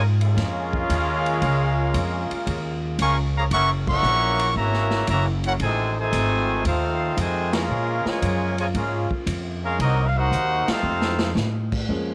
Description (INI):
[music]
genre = jazz, big band swing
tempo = 115 BPM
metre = 4/4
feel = swing 69% on 8ths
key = Bb minor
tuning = A4 = 440 Hz
[part]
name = clear trumpet section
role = melody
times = 0.0-11.3 s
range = C4 to Db6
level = -27 LUFS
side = equal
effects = none
[part]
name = clear saxophone section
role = sustained chords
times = 0.0-11.9 s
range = C3 to F4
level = -36 LUFS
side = equal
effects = none
[part]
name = upright bass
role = bass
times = 0.0-12.1 s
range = Gb1 to Bb2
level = -26 LUFS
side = equal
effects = tube saturation
[part]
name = muted trombone section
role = second line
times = 0.2-11.3 s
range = C3 to Gb4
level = -31 LUFS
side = equal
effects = none
[part]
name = swinging big-band drum kit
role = drums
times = 0.2-12.1 s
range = crash cymbal, hi-hat, kick drum, ride cymbal, snare drum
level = -33 LUFS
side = equal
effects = none
[part]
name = warm baby grand piano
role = accompaniment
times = 11.9-12.1 s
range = F3 to Ab4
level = -28 LUFS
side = equal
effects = none
[sound]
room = small room ambience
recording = none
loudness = -23 LUFS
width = mono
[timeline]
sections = 0.0-11.9 A section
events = band accent 3.8, 7.4, 10.6; drum fill 10.3-11.4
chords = 0.0 Bbm7; 3.5 Gb7; 5.6 F7#9; 7.7 Bbm7; 9.8 Cm7b5; 10.8 F7